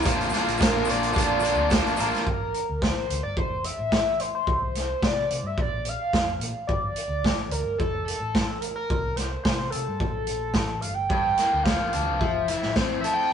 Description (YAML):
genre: indie rock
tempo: 108 BPM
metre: 4/4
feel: straight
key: unclear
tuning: A4 = 438 Hz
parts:
  - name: combo organ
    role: sustained chords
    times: 0.0-2.2 s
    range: Bb4 to D6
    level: -39 LUFS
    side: equal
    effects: none
  - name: overdriven electric guitar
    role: riff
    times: 0.0-2.2, 11.1-13.3 s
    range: G2 to A4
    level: -26 LUFS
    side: left 2 dB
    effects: none
  - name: overdriven electric guitar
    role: riff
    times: 0.0-2.2 s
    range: F3 to D4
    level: -28 LUFS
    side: equal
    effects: none
  - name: tube shaker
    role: percussion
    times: 0.0-2.2 s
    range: none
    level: -44 LUFS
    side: right 5 dB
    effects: none
  - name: picked electric bass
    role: bass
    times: 0.1-12.9 s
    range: F1 to C3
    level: -33 LUFS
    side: equal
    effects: none
  - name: raw garage drum kit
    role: drums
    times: 0.1-13.2 s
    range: hi-hat, kick drum, snare drum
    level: -26 LUFS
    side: equal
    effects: none
  - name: overdriven synth lead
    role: melody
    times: 0.6-13.3 s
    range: A4 to G5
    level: -27 LUFS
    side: equal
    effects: distortion, chorus, phaser, analog delay
room: light reverb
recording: rough rehearsal-room recording, nothing above 10.4 kHz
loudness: -22 LUFS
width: side -8 dB against mid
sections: 0.0-2.3 A section; 2.3-13.3 B section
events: none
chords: 0.1 Bb; 2.3 Gm; 3.4 Fmaj7; 4.5 C5; 5.6 Bb5; 6.7 G5; 7.8 F; 8.9 C5; 10.0 Gmadd9; 11.1 Gm7; 12.2 Fmaj7